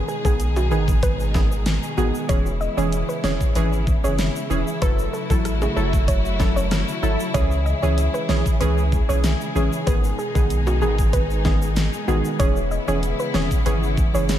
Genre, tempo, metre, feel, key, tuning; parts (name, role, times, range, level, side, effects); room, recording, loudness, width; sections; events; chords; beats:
dancehall; 95 BPM; 4/4; straight; A4 = 440 Hz
glassy wavetable pluck; accompaniment; 0.0-14.4 s; D#3 to A4; -26 LUFS; right 1 dB; chorus, sidechain pumping
warm studio string section; sustained chords; 0.0-14.4 s; B2 to G#4; -28 LUFS; left 1 dB; sidechain pumping
punchy sub bass; bass; 0.0-14.4 s; E1 to C#2; -23 LUFS; equal
soft round pluck; melody; 0.1-14.2 s; F#4 to D#5; -28 LUFS; right 1 dB; chorus, ping-pong delay
egg shaker and timbales; percussion; 0.1-14.4 s; -37 LUFS; left 2 dB
pop drum kit; drums; 0.2-14.4 s; hi-hat, kick drum, rim click, snare drum; -22 LUFS; equal
light reverb; -18 LUFS; side -11 dB against mid
0.0-14.4 A section
0.0 G#m; 2.3 E6; 4.8 F#m7; 7.3 C#m; 9.9 G#m; 12.4 E6
0.40 1.03 1.66 | 2.29 2.92 3.56 4.19 | 4.82 5.45 6.08 6.71 | 7.34 7.98 8.61 9.24 | 9.87 10.50 11.13 11.77 | 12.40 13.03 13.66 14.29